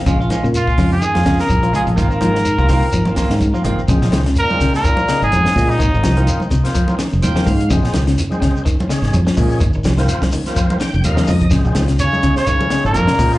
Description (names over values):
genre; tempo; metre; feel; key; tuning
afrobeat; 126 BPM; 4/4; swing 55% on 16ths; Bb minor; A4 = 440 Hz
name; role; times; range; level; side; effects
electric guitar at the edge of break-up; arpeggios; 0.1-13.2 s; C3 to Ab3; -22 LUFS; left 2 dB; spring reverb, plate reverb
semi-hollow electric guitar; stabs; 0.1-3.8 s; Eb3 to F4; -23 LUFS; right 2 dB; plate reverb, slapback echo
fingered electric bass; bass; 0.1-13.4 s; F1 to Bb2; -16 LUFS; equal; none
compact cocktail drum kit; drums; 0.1-13.3 s; hi-hat, kick drum, snare drum; -20 LUFS; equal; none
shekere; percussion; 0.1-13.4 s; none; -25 LUFS; equal; none
congas; percussion; 0.3-13.3 s; none; -24 LUFS; right 1 dB; none
clear trumpet; melody; 0.6-6.4, 12.0-13.4 s; Eb4 to Db5; -19 LUFS; equal; plate reverb, slapback echo, analog delay
overdriven tonewheel organ; accompaniment; 3.9-13.4 s; Db3 to G5; -25 LUFS; equal; slow rotary speaker, plate reverb, slapback echo
brilliant trombone section; second line; 4.4-6.4, 12.0-13.4 s; Eb2 to Db3; -25 LUFS; equal; plate reverb
room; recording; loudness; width
moderate club reverb, RT60 0.7 s; live gig heard through the venue's PA, club reverb, nothing above 10.9 kHz; -13 LUFS; side -17 dB against mid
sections
0.0-3.9 A section; 3.9-13.4 B section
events
tonewheel organ fill 7.0-7.7, 10.6-11.5; drum fill 11.1-11.5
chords
0.1 Bbm7; 2.0 Ab69; 3.9 Bbm7; 5.8 Ab69; 7.7 Bbm7; 9.6 Ab69; 11.5 Bbm7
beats
| 0.07 0.55 1.03 1.50 | 1.98 2.46 2.94 3.42 | 3.89 4.37 4.85 5.32 | 5.80 6.28 6.75 7.23 | 7.71 8.19 8.66 9.14 | 9.62 10.10 10.57 11.05 | 11.53 12.01 12.48 12.96